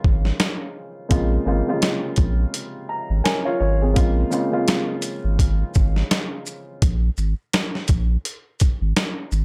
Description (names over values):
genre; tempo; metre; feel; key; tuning
hip hop, boom-bap hip-hop; 84 BPM; 4/4; swing 59% on 16ths; Bb minor; A4 = 437 Hz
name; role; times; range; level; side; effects
dark upright piano; accompaniment; 0.0-6.8 s; C3 to Bb5; -27 LUFS; equal; cassette tape, high-pass filter, low-pass filter
saturated sub bass; bass; 0.0-9.4 s; Ab1 to Bb1; -22 LUFS; equal; none
boom bap sampler-style drum kit; drums; 0.0-9.4 s; hi-hat, kick drum, shaker, snare drum; -23 LUFS; equal; none
room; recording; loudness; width
light reverb; none; -21 LUFS; mono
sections
0.0-9.4 A section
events
none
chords
0.0 Bbm7; 6.8 Absus2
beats
0.39 | 1.11 1.82 2.54 3.25 | 3.96 4.68 5.39 6.11 | 6.82 7.54 8.25 8.96